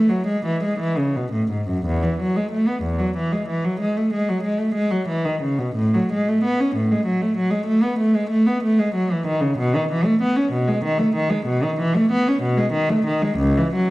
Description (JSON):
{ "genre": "classical, baroque-style suite movement for unaccompanied cello", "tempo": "62 BPM (dotted quarters)", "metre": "12/8", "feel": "uneven beats, rubato", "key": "E major", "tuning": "A4 = 441 Hz", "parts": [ { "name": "rich cello", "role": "solo", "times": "0.0-13.9 s", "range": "C#2 to C#4", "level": "-18 LUFS", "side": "equal", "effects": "none" } ], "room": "wet recital hall reverb, RT60 1.5 s", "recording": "dark, warm production", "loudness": "-18 LUFS", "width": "side -19 dB against mid", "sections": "0.0-1.9 A section; 1.9-13.9 B section", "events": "none", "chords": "none" }